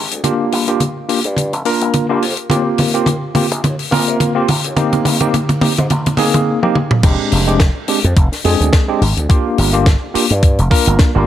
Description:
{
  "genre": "nu-disco, nu disco",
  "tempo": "106 BPM",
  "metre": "4/4",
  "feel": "swing 56% on 16ths",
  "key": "F dorian",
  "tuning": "A4 = 442 Hz",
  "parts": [
    { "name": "slap bass with an envelope filter", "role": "bass", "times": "0.0-11.2 s", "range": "F1 to C3", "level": "-17 LUFS", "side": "equal", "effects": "tube saturation, high-pass filter" },
    { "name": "tight funk drum kit", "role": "drums", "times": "0.1-11.1 s", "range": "crash cymbal, hi-hat, snare drum, toms", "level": "-17 LUFS", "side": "equal", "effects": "none" },
    { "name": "barky tine electric piano", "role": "accompaniment", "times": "0.2-11.3 s", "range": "Ab3 to Bb4", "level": "-17 LUFS", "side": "equal", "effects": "medium stereo tremolo, sidechain pumping, tape echo" },
    { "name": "electronic kick drum", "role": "drums", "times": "7.0-11.1 s", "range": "none", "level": "-12 LUFS", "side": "equal", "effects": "none" }
  ],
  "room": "light reverb, small room ambience",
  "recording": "none",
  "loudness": "-12 LUFS",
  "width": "side -11 dB against mid",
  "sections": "0.0-7.0 A section; 7.0-11.3 B section",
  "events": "build-up 0.0-7.0; drum fill 0.0-6.5, 6.6-7.0; drop 7.0-11.3",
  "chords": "0.2 Gm7; 2.5 Eb69; 4.5 Abmaj9; 7.0 Fm69; 9.3 Gm7",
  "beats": "| 0.24 0.81 1.37 1.94 | 2.50 3.07 3.64 4.20 | 4.77 5.33 5.90 6.47 | 7.03 7.60 8.16 8.73 | 9.30 9.86 10.43 10.99"
}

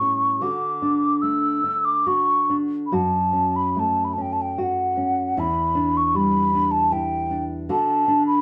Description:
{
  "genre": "celtic folk, Celtic slow air",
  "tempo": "68-79 BPM",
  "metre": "3/4",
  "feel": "rubato",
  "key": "unclear",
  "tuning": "A4 = 439 Hz",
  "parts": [
    { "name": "mellow hollow wooden flute", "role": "melody", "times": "0.0-8.4 s", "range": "F#5 to E6", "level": "-23 LUFS", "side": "equal", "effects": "none" },
    { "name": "nylon-string guitar", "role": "accompaniment", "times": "0.0-8.4 s", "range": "E2 to G4", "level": "-27 LUFS", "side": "equal", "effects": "none" }
  ],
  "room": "moderate studio reverb, RT60 0.8 s",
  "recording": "band playing live in one room",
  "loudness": "-22 LUFS",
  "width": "mono",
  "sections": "0.0-8.4 A section",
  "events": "none",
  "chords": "0.4 D; 2.9 F#m; 5.4 Em7; 7.7 D",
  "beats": "| 0.41 1.22 2.06 | 2.92 3.77 4.60 | 5.39 6.16 6.93 | 7.70"
}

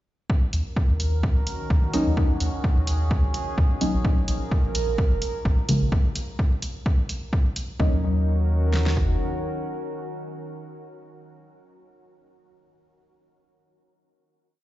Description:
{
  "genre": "dub techno",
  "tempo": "128 BPM",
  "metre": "4/4",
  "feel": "swing 55% on 16ths",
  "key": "Eb minor",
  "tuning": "A4 = 439 Hz",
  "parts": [
    { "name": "warbly tape-like pad", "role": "sustained chords", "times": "0.9-11.1 s", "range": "Eb3 to Bb4", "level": "-32 LUFS", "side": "right 1 dB", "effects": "chorus, built-in reverb, phaser, sidechain pumping" },
    { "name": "deep house drum kit", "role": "drums", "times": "0.3-9.1 s", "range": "kick drum, snare drum", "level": "-23 LUFS", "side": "equal", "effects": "overdrive" },
    { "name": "soft dub sub bass", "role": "bass", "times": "0.5-9.2 s", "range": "F1 to Eb2", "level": "-23 LUFS", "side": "equal", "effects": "tube saturation, sidechain pumping" },
    { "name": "electronic hi-hat", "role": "drums", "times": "0.5-7.7 s", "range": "none", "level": "-33 LUFS", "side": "right 1 dB", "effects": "none" },
    { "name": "deep mellow chord stab", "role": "stabs", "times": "1.9-11.1 s", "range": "Db3 to Eb4", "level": "-28 LUFS", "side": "left 1 dB", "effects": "chorus, phaser, dub echo" }
  ],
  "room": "little or no reverb",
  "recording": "played on a big sound system in a bare room, stone room reverb, nothing above 7.6 kHz",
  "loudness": "-21 LUFS",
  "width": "side -15 dB against mid",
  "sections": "0.3-7.8 groove; 7.8-11.5 final chord",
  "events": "none",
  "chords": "0.3 Ebm7; 4.0 Bbm7; 7.8 Ebm7",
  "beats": "| 0.30 0.77 1.23 1.70 | 2.17 2.64 3.11 3.58 | 4.05 4.51 4.98 5.45 | 5.92 6.39 6.86 7.33 | 7.80 8.27 8.73 9.20 | 9.67 10.14 10.61 11.08"
}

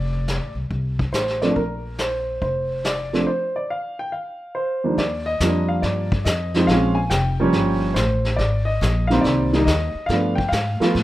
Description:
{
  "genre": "jazz piano trio",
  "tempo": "141 BPM",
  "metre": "4/4",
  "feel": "swing 67% on 8ths",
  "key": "Bb major",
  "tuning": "A4 = 440 Hz",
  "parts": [
    { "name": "warm upright piano", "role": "melody", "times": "0.0-11.0 s", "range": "Eb2 to Ab5", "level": "-21 LUFS", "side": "right 1 dB", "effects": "plate reverb" },
    { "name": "upright bass", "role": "bass", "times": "0.0-11.0 s", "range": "F1 to A2", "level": "-23 LUFS", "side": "left 1 dB", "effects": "none" },
    { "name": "vintage brush drum kit", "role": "drums", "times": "0.3-11.0 s", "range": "brushed snare drum, hi-hat, kick drum, snare drum", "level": "-26 LUFS", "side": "equal", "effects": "none" }
  ],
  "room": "wet studio reverb, RT60 0.7 s",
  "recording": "rough home demo mix",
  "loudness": "-19 LUFS",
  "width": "side -15 dB against mid",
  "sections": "0.0-5.0 A section; 5.0-11.0 B section",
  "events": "none",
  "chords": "0.0 F6; 1.6 Bbadd9; 5.0 Ebmaj9; 6.7 Bbm7; 7.5 Gm11; 8.4 Abmaj7; 10.1 G7",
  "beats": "0.28 0.71 1.14 | 1.56 1.99 2.42 2.85 | 3.27 3.70 4.13 4.55 | 4.98 5.41 5.83 6.26 | 6.69 7.11 7.54 7.97 | 8.39 8.82 9.24 9.67 | 10.10 10.52 10.95"
}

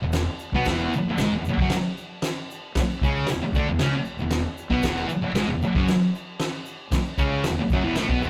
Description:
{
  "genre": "garage rock duo or trio",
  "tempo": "115 BPM",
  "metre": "4/4",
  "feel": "straight",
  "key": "E major",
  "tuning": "A4 = 440 Hz",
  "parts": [
    { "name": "thick fuzz guitar", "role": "riff", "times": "0.0-8.3 s", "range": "E2 to D4", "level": "-26 LUFS", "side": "equal", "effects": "distortion" },
    { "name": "fuzz fingered electric bass", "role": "bass", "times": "0.0-8.3 s", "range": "E1 to D2", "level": "-34 LUFS", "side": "equal", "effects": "overdrive" },
    { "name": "vintage drum kit", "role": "drums", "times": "0.1-8.2 s", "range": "crash cymbal, kick drum, snare drum", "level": "-29 LUFS", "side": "equal", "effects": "none" },
    { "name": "egg shaker", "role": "percussion", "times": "0.1-8.3 s", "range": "none", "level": "-52 LUFS", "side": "equal", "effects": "none" }
  ],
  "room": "light reverb",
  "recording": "rough rehearsal-room recording, tube saturation",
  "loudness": "-25 LUFS",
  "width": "mono",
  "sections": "0.0-8.3 A section",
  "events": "none",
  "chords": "0.0 E5",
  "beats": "0.13 | 0.66 1.18 1.71 2.23 | 2.75 3.28 3.80 4.32 | 4.84 5.36 5.88 6.40 | 6.92 7.44 7.96"
}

